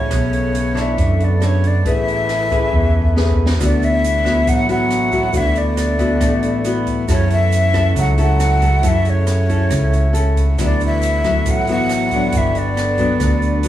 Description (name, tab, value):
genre	bossa nova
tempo	138 BPM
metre	4/4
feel	straight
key	A major, D major from 3.6 s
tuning	A4 = 439 Hz
part	breathy hollow jazz flute	melody	0.0-13.7 s	C#5 to F#5	-20 LUFS	left 1 dB	plate reverb
part	clear trombone	second line	0.0-13.7 s	C#3 to F#3	-28 LUFS	right 5 dB	none
part	nylon-string guitar	accompaniment	0.0-13.7 s	G2 to C#5	-21 LUFS	left 4 dB	none
part	pedal harmonium	sustained chords	0.0-13.7 s	B2 to B4	-27 LUFS	right 2 dB	none
part	fingered electric bass	bass	0.0-13.7 s	G1 to F#2	-18 LUFS	equal	none
part	open jazz drum kit	drums	0.1-13.7 s	hi-hat, kick drum, rim click, snare drum	-23 LUFS	right 1 dB	none
part	egg shaker	percussion	3.6-13.7 s	none	-37 LUFS	right 8 dB	none
room	light reverb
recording	small room ambience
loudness	-14 LUFS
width	side -12 dB against mid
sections	0.0-3.6 A section; 3.6-13.7 B section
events	drum fill 2.7-3.6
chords	0.1 Bm9; 1.9 Amaj9; 3.6 D69; 7.1 F#m7; 10.6 D69; 12.3 Gmaj7